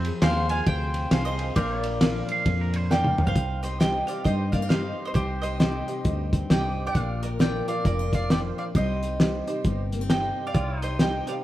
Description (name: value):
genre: honky-tonk and classic country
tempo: 134 BPM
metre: 4/4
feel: swing 62% on 8ths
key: C minor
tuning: A4 = 439 Hz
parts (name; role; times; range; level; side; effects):
- twangy electric guitar; second line; 0.0-3.3 s; C4 to F5; -32 LUFS; right 4 dB; tape echo
- picked steel-string acoustic guitar; accompaniment; 0.0-11.4 s; G2 to Bb4; -33 LUFS; left 3 dB; none
- fingered electric bass; bass; 0.0-11.2 s; F1 to G2; -29 LUFS; equal; none
- cloth-damped thuddy drum kit; drums; 0.0-11.4 s; hi-hat, kick drum, ride cymbal, snare drum, toms; -24 LUFS; equal; none
- mandolin; melody; 0.2-11.3 s; G4 to Ab5; -30 LUFS; right 1 dB; none
- honky-tonk upright piano; accompaniment; 0.2-11.4 s; Eb4 to D6; -36 LUFS; right 2 dB; none
- pedal steel guitar; sustained chords; 0.2-3.3, 10.5-11.4 s; Eb4 to F5; -36 LUFS; left 2 dB; none
room: moderate plate reverb, RT60 1.7 s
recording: heard from further back in the room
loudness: -22 LUFS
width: side -14 dB against mid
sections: 0.0-3.4 A section; 3.4-11.4 B section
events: drum fill 2.9-3.4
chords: 0.0 Fm; 1.6 Bb; 3.4 Cm; 7.0 Bb; 8.8 Cm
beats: 0.22 0.67 1.12 | 1.56 2.01 2.46 2.91 | 3.36 3.81 4.26 4.71 | 5.16 5.61 6.05 6.50 | 6.95 7.40 7.85 8.30 | 8.75 9.20 9.65 10.10 | 10.55 10.99